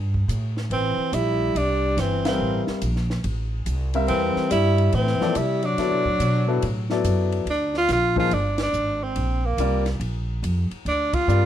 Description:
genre	modal jazz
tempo	142 BPM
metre	4/4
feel	swing 65% on 8ths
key	A phrygian, G phrygian from 7.5 s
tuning	A4 = 440 Hz
part	upright bass	bass	0.0-11.5 s	G1 to D3	-24 LUFS	equal	none
part	compact cocktail drum kit	drums	0.1-11.4 s	hi-hat, kick drum, ride cymbal, snare drum	-34 LUFS	equal	none
part	clear tenor saxophone	melody	0.7-11.5 s	Bb3 to F4	-23 LUFS	right 2 dB	plate reverb
part	warm tenor saxophone	second line	0.7-7.0 s	E3 to G3	-26 LUFS	left 3 dB	none
part	clear concert grand piano	accompaniment	2.3-11.5 s	F3 to F5	-25 LUFS	left 4 dB	none
room	moderate studio reverb, RT60 0.6 s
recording	dark, warm production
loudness	-20 LUFS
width	side -10 dB against mid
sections	0.0-7.5 A section; 7.5-11.5 B section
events	band accent 2.2, 8.5, 11.1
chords	0.0 Am7; 5.8 D; 7.5 Gm7

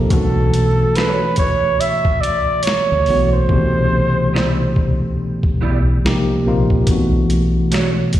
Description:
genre	R&B, neo-soul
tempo	71 BPM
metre	4/4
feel	swing 61% on 16ths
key	B phrygian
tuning	A4 = 442 Hz
part	tine electric piano	accompaniment	0.0-8.2 s	B2 to A4	-19 LUFS	left 1 dB	medium stereo tremolo
part	deep dub fingered electric bass	bass	0.0-7.6 s	Bb1 to D2	-18 LUFS	equal	none
part	breathy flugelhorn	melody	0.1-5.0 s	A4 to E5	-18 LUFS	right 2 dB	slapback echo
part	boom bap sampler-style drum kit	drums	0.1-8.2 s	hi-hat, kick drum, snare drum	-19 LUFS	equal	none
part	electric guitar through a small old amp	second line	1.0-7.9 s	A3 to D5	-26 LUFS	right 6 dB	ensemble chorus, slapback echo
room	light reverb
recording	live gig heard through the venue's PA, recital hall reverb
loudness	-14 LUFS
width	side -13 dB against mid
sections	0.0-8.2 A section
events	hi-hats muted 3.5-6.9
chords	0.1 Bm9; 3.5 Cmaj9; 6.0 Cm7; 6.9 Bm7

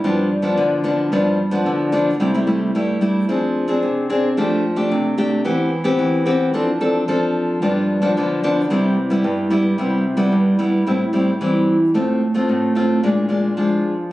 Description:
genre	samba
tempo	111 BPM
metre	4/4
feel	straight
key	C major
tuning	A4 = 440 Hz
part	nylon-string guitar	solo	0.0-14.1 s	G2 to A4	-16 LUFS	equal	slapback echo
room	moderate studio reverb, RT60 0.6 s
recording	recorded on a phone in the room, club reverb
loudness	-16 LUFS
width	side -16 dB against mid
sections	0.0-10.9 A section; 10.9-14.1 B section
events	none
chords	0.0 G7; 2.2 C6; 3.3 Fm6; 4.4 F69; 5.5 Cmaj7/E; 6.5 Dm7/F; 7.6 G7; 8.7 Cmaj7; 10.9 Am7; 12.0 F/A; 13.0 Bb7

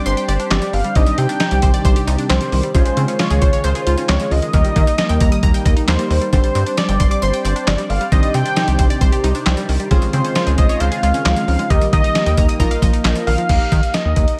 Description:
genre	synth-pop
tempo	134 BPM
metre	4/4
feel	straight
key	Eb major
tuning	A4 = 440 Hz
part	unison lead	melody	0.0-14.4 s	C5 to G5	-24 LUFS	equal	none
part	warm analog keys	accompaniment	0.0-14.4 s	G3 to Eb5	-27 LUFS	equal	chorus, phaser
part	phased analog pad	sustained chords	0.0-13.5 s	C3 to D5	-28 LUFS	equal	phaser, chorus
part	analog pluck	arpeggios	0.0-13.5 s	D3 to Eb6	-28 LUFS	equal	chorus, digital delay
part	rubbery square bass	bass	0.1-14.3 s	G1 to Eb3	-20 LUFS	equal	none
part	trip hop sampler-style drum kit	drums	0.1-14.4 s	crash cymbal, handclaps, hi-hat, kick drum, snare drum	-20 LUFS	equal	none
room	little or no reverb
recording	none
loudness	-16 LUFS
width	mono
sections	0.0-13.5 A section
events	synth keys fill 12.8-13.5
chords	0.0 Gsus4; 1.0 Cmadd9; 2.7 Dbmaj7; 4.5 Eb; 6.3 Gsus4; 8.1 Cmadd9; 9.9 Dbmaj7; 11.7 Eb; 12.6 Bbsus4; 13.5 Eb

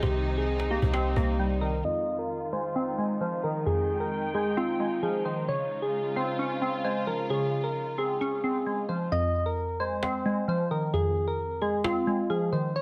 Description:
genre	hip hop, trap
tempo	132 BPM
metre	4/4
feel	half-time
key	F minor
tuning	A4 = 436 Hz
part	soft electric-piano-like synth keys	melody	0.0-12.8 s	F4 to Eb5	-32 LUFS	equal	chorus, low-pass filter
part	glassy wavetable pluck	accompaniment	0.0-12.8 s	F2 to Db4	-32 LUFS	equal	chorus, low-pass filter
part	dark chamber string section	sustained chords	0.0-9.1 s	C3 to G5	-38 LUFS	equal	low-pass filter
part	warm 808-style bass	bass	0.0-1.8 s	C2	-30 LUFS	equal	none
part	cajon	drums	0.0-1.8, 9.1-12.8 s	none	-37 LUFS	equal	none
room	light reverb, studio ambience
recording	none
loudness	-28 LUFS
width	mono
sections	0.0-1.8 A section; 1.8-9.1 B section; 9.1-12.8 C section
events	filter sweep 1.8-9.1; kick muted 9.1-12.8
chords	0.0 Cm7; 1.8 Fm7; 5.5 Dbmaj7; 9.1 Fm7

